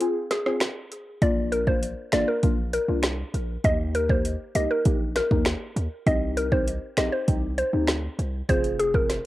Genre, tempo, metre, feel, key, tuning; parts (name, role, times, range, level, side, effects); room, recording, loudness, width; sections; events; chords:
dancehall; 99 BPM; 4/4; straight; C minor; A4 = 440 Hz
deep mellow chord stab; accompaniment; 0.0-9.1 s; Bb3 to Ab4; -29 LUFS; left 2 dB; chorus, cassette tape
afro-pop drum kit; drums; 0.0-9.2 s; finger snaps, hi-hat, kick drum, rim click, snare drum; -25 LUFS; equal; overdrive, cassette tape
mallet-like synth pluck; melody; 0.3-9.1 s; Ab4 to Eb5; -26 LUFS; equal; chorus, analog delay
hard-hitting 808-style bass; bass; 1.2-9.2 s; F1 to Eb2; -29 LUFS; equal
moderate spring reverb, RT60 1.2 s; home recording on cassette; -22 LUFS; side -16 dB against mid
0.0-9.3 A section
break 0.0-1.2
0.0 Fm; 1.2 Bb; 3.6 Eb; 6.1 Cm; 8.5 Fm